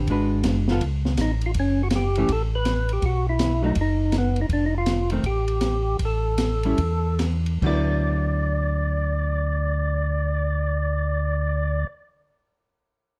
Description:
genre	soul jazz organ trio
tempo	138-163 BPM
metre	4/4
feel	swing 64% on 8ths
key	D major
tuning	A4 = 440 Hz
part	archtop guitar, miked and amplified	accompaniment	0.0-12.3 s	D3 to B4	-29 LUFS	equal	none
part	mellow tonewheel organ	bass	0.0-11.8 s	F1 to E2	-26 LUFS	equal	chorus vibrato, slow rotary speaker
part	open jazz drum kit	drums	0.1-7.8 s	crash cymbal, hi-hat, kick drum, ride cymbal, snare drum	-30 LUFS	equal	none
part	percussive tonewheel organ	melody	1.2-11.9 s	B3 to D5	-29 LUFS	equal	slow rotary speaker, overdrive, plate reverb
room	light reverb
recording	dark, warm production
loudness	-23 LUFS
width	mono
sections	0.0-1.6 A section; 1.6-7.6 B section; 7.6-11.1 C section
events	slowing down 4.5-7.6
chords	0.1 G#m7b5; 0.8 A; 1.6 F#m; 3.0 B; 4.5 F; 6.0 A5; 7.6 D69

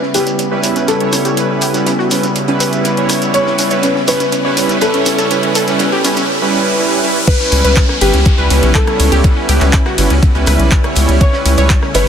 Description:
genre	progressive house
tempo	122 BPM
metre	4/4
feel	straight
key	unclear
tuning	A4 = 440 Hz
part	dark baby grand piano	melody	0.0-12.1 s	G4 to C#5	-19 LUFS	left 2 dB	ping-pong delay
part	lush unison pad	sustained chords	0.0-12.1 s	C#3 to E4	-21 LUFS	left 1 dB	chorus, sidechain pumping
part	wide unison pluck	arpeggios	0.0-12.0 s	C#4 to C#5	-20 LUFS	equal	sidechain pumping, ping-pong delay
part	damped 70s drum kit	drums	0.0-12.1 s	hi-hat, snare drum	-27 LUFS	right 4 dB	none
part	riser and downlifter	sound effects	0.0-11.2 s	none	-23 LUFS	equal	none
part	soft supersaw	stabs	0.1-12.1 s	G3 to C#5	-17 LUFS	right 3 dB	sidechain pumping, ping-pong delay
part	round analog bass	bass	0.1-12.0 s	G1 to C#2	-14 LUFS	equal	sidechain pumping, high-pass filter
part	pop drum kit	drums	0.1-12.0 s	crash cymbal, handclaps, hi-hat, ride cymbal, rim click	-19 LUFS	equal	overdrive, high-pass filter on snare, sidechain pumping on hats, high-pass filter on hats, sidechain pumping on cymbals, high-pass filter on cymbals, high-pass filter on room
part	shekere	percussion	0.1-6.3 s	none	-25 LUFS	right 2 dB	none
part	electronic kick drum	drums	7.3-11.8 s	none	-12 LUFS	equal	overdrive
room	moderate huge ambient reverb, RT60 5.0 s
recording	dense, heavily limited modern master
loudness	-10 LUFS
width	side -8 dB against mid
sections	0.0-7.3 A section; 7.3-12.1 B section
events	build-up 0.0-7.3; riser 0.0-7.3; filter sweep on synth pluck 0.0-7.3; drop 7.3-12.1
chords	0.0 C#m7b5

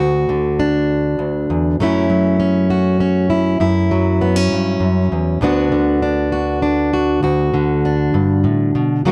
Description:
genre	folk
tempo	66 BPM (dotted quarters)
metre	6/8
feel	straight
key	D major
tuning	A4 = 440 Hz
part	fingerpicked plugged-in steel-string acoustic guitar	solo	0.0-9.1 s	D2 to F#4	-16 LUFS	equal	none
room	light reverb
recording	dark, warm production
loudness	-16 LUFS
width	mono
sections	0.0-9.1 A section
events	none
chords	0.0 D; 1.8 F#m7; 5.4 D6

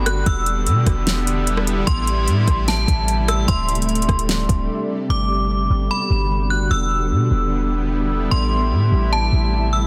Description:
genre	hip hop, atmospheric cloud-rap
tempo	149 BPM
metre	4/4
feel	half-time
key	A dorian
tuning	A4 = 440 Hz
part	metallic FM bell	melody	0.0-9.9 s	A5 to F#6	-26 LUFS	equal	chorus, phaser, tape echo
part	shimmering ambient pad	sustained chords	0.0-9.9 s	C3 to F#4	-26 LUFS	equal	chorus, built-in reverb
part	clean 808-style bass	bass	0.0-9.9 s	D1 to B2	-22 LUFS	equal	none
part	smooth R&B drum kit	drums	0.1-4.6 s	hi-hat, kick drum, rim click, snare drum	-23 LUFS	equal	overdrive
room	light reverb, digital ambience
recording	dense, heavily limited modern master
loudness	-19 LUFS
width	mono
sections	0.0-5.1 A section; 5.1-9.9 B section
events	break 4.7-5.1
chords	0.3 Em7; 1.9 Am7; 3.5 D7sus4; 5.1 Gmaj7; 6.7 Em7; 8.3 Am7

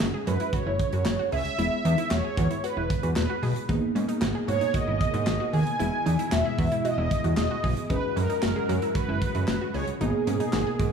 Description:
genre	synth-pop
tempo	114 BPM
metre	4/4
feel	straight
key	unclear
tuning	A4 = 440 Hz
part	muted felt-like synth keys	accompaniment	0.0-10.9 s	G#3 to G#4	-33 LUFS	left 3 dB	chorus
part	wide unison pluck	arpeggios	0.0-10.9 s	C#4 to G#4	-36 LUFS	right 2 dB	analog delay
part	fat analog bass	bass	0.0-10.9 s	E1 to G#2	-26 LUFS	right 1 dB	none
part	modern studio drum kit	drums	0.0-10.9 s	handclaps, hi-hat, kick drum, snare drum	-30 LUFS	right 1 dB	none
part	mellow synth brass	melody	0.3-10.9 s	G#4 to G#5	-29 LUFS	right 1 dB	chorus, phaser, analog delay
part	string machine, cellos	sustained chords	3.7-10.9 s	B2 to A#4	-33 LUFS	equal	phaser, ensemble chorus
room	moderate echo chamber reverb, RT60 1.6 s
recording	echo-heavy mix, studio reverb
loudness	-23 LUFS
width	side -6 dB against mid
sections	0.0-10.9 A section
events	none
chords	0.0 F#sus2; 1.6 E; 3.7 G#madd9; 5.8 E; 7.9 F#sus2; 10.0 G#madd9

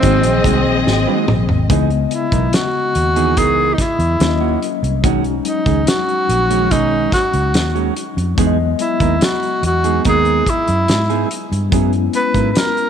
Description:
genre	lush 1970s-style soul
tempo	72 BPM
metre	4/4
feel	straight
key	C# dorian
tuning	A4 = 443 Hz
part	breathy tenor saxophone	melody	0.0-12.9 s	C4 to B4	-18 LUFS	equal	none
part	warm studio string section	second line	0.0-1.7 s	B#3 to D#5	-20 LUFS	equal	none
part	mellow tine electric piano	accompaniment	0.0-12.9 s	C#3 to D#5	-22 LUFS	left 14 dB	medium stereo tremolo
part	mellow electric guitar	riff	0.0-12.8 s	D#3 to D#5	-22 LUFS	right 15 dB	spring reverb
part	vintage muted fingered electric bass	bass	0.0-12.5 s	G#1 to G#2	-18 LUFS	equal	none
part	warm soul drum kit	drums	0.0-12.9 s	hi-hat, kick drum, snare drum, toms	-19 LUFS	equal	none
room	light reverb, studio ambience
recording	1960s-style stereo with parts hard left and right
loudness	-13 LUFS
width	side -8 dB against mid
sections	0.0-1.7 A section; 1.7-12.9 B section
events	drum fill 0.9-1.7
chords	0.0 G#7; 1.7 C#m9; 4.2 D#m7; 5.0 B69; 8.4 Emaj7; 11.7 F#9sus4

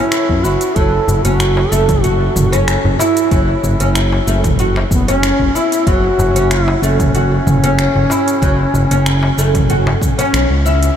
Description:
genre	organic downtempo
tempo	94 BPM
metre	4/4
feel	swing 53% on 16ths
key	F# minor pentatonic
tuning	A4 = 440 Hz
part	reedy bass bansuri	melody	0.0-10.3 s	B3 to A4	-18 LUFS	equal	diffuse ambient delay
part	oud	arpeggios	0.0-11.0 s	F#3 to F#4	-18 LUFS	equal	ping-pong delay
part	organic electronic drum kit	drums	0.1-10.9 s	cabasa, finger snaps, hi-hat, toms	-21 LUFS	equal	none
part	smooth gliding synth bass	bass	0.3-10.9 s	F#1 to F#2	-15 LUFS	equal	none
part	electronic kick drum	drums	0.3-10.2 s	none	-17 LUFS	equal	none
part	darbuka	percussion	1.1-10.3 s	none	-25 LUFS	left 2 dB	none
room	moderate huge ambient reverb, RT60 8.0 s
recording	dreamy mix soaked in reverb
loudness	-11 LUFS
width	side -9 dB against mid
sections	0.0-11.0 A section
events	kick drops out 10.3-11.0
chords	0.0 F#5; 0.8 F#7(no3); 5.9 F#5

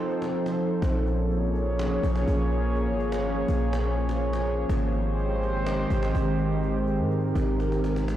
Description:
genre	hip hop, atmospheric cloud-rap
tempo	124 BPM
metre	4/4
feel	half-time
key	Bb dorian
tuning	A4 = 441 Hz
part	warbly tape-like pad	sustained chords	0.0-8.2 s	Eb3 to Db5	-26 LUFS	right 1 dB	chorus, built-in reverb
part	cajon	drums	0.1-8.2 s	none	-39 LUFS	equal	none
part	warm 808-style bass	bass	0.8-8.2 s	Ab1 to Ab2	-27 LUFS	equal	none
room	small room reverb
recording	blown-out, overdriven recording, overdrive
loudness	-24 LUFS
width	side -12 dB against mid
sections	0.0-8.2 A section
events	break 0.0-0.8; drum fill 7.6-8.2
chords	0.0 F7; 0.8 Bbm7; 4.7 Abmaj7

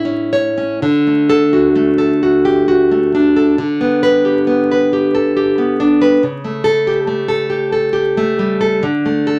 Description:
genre	romantic piece for solo classical guitar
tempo	45 BPM (dotted quarters)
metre	6/8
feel	uneven beats, rubato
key	D major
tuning	A4 = 440 Hz
part	nylon-string guitar	solo	0.0-9.4 s	A2 to C#5	-14 LUFS	equal	none
room	light reverb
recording	vinyl crackle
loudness	-14 LUFS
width	mono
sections	0.8-9.4 A section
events	none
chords	0.0 A; 0.8 D; 3.6 G/D; 6.2 A7/C#; 8.8 D5

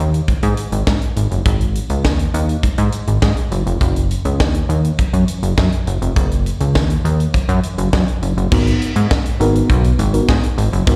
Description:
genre	early-eighties boogie funk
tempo	102 BPM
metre	4/4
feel	straight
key	unclear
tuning	A4 = 440 Hz
part	plucky analog bass	bass	0.0-11.0 s	E#1 to G#2	-18 LUFS	equal	none
part	tight funk drum kit	drums	0.1-11.0 s	crash cymbal, hi-hat, kick drum, snare drum	-21 LUFS	equal	none
part	mellow FM electric piano	accompaniment	8.5-11.0 s	B3 to A#4	-20 LUFS	equal	chorus, slapback echo
room	little or no reverb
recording	live gig heard through the venue's PA, recital hall reverb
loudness	-17 LUFS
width	mono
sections	0.0-8.5 A section; 8.5-11.0 B section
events	none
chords	0.0 G#5; 3.5 F#5; 8.5 G#m7

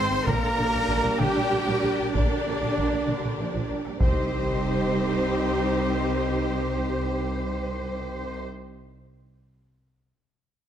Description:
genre	cinematic, epic orchestral film score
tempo	64 BPM (dotted quarters)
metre	6/8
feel	straight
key	C minor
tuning	A4 = 437 Hz
part	warm studio violin section	melody	0.0-8.4 s	G4 to C6	-38 LUFS	left 2 dB	none
part	mellow concert flute	second line	0.0-8.4 s	C5 to C6	-34 LUFS	left 2 dB	none
part	rich studio violin section	second line	0.0-8.4 s	C5 to C6	-40 LUFS	left 1 dB	none
part	warm symphonic viola section	accompaniment	0.0-8.4 s	D3 to Eb4	-33 LUFS	right 1 dB	none
part	clear trombone section	sustained chords	0.0-8.4 s	G3 to Eb4	-36 LUFS	right 2 dB	none
part	warm French horn section	sustained chords	0.0-8.4 s	D3 to C4	-34 LUFS	left 2 dB	none
part	warm symphonic string section	sustained chords	0.0-8.4 s	C4 to Eb5	-33 LUFS	right 1 dB	none
part	warm trumpet	stabs	0.0-8.4 s	D4 to C5	-35 LUFS	right 2 dB	none
part	rich symphonic double bass section	bass	0.0-8.4 s	Ab1 to C2	-30 LUFS	right 2 dB	none
part	warm symphonic cello section	bass	0.0-8.4 s	D4 to C5	-31 LUFS	right 1 dB	none
part	taiko ensemble	drums	0.1-5.2 s	none	-27 LUFS	equal	none
part	sub drop	sound effects	4.1-5.9 s	none	-34 LUFS	equal	none
room	moderate scoring stage reverb, RT60 1.7 s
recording	none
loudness	-23 LUFS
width	side -9 dB against mid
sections	0.0-4.0 A section; 4.0-7.8 B section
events	impact 4.0-5.9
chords	0.3 Gm/Bb; 4.0 Cm

